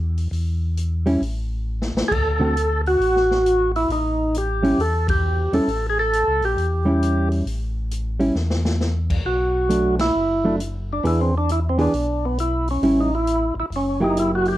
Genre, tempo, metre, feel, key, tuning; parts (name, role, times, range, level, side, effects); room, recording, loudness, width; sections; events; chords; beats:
soul jazz organ trio; 134 BPM; 4/4; swing 65% on 8ths; A mixolydian; A4 = 440 Hz
mellow tonewheel organ; bass; 0.0-14.6 s; F#1 to E2; -23 LUFS; equal; slow rotary speaker
swinging big-band drum kit; drums; 0.2-14.5 s; crash cymbal, hi-hat, kick drum, ride cymbal, snare drum; -29 LUFS; left 1 dB
hollow-body jazz guitar; accompaniment; 1.1-14.6 s; D3 to G#4; -20 LUFS; right 1 dB
percussive tonewheel organ; melody; 2.1-14.6 s; B3 to A4; -20 LUFS; right 1 dB; slow rotary speaker
moderate studio reverb, RT60 0.6 s; worn, warbling old tape, cassette tape, warbly pitch drift; -18 LUFS; side -14 dB against mid
0.0-14.6 A section
drum fill 1.7-2.1, 8.4-8.8; band accent 5.0, 9.9
0.3 Em; 1.2 N.C.; 2.1 D; 3.9 A7; 9.3 Bm7; 11.0 E7; 12.8 A7; 13.7 F#7b9
| 0.33 0.77 1.22 1.67 | 2.11 2.56 3.01 3.45 | 3.90 4.34 4.79 5.24 | 5.68 6.13 6.58 7.02 | 7.47 7.92 8.36 8.81 | 9.25 9.70 10.14 10.59 | 11.04 11.48 11.93 12.37 | 12.82 13.27 13.71 14.16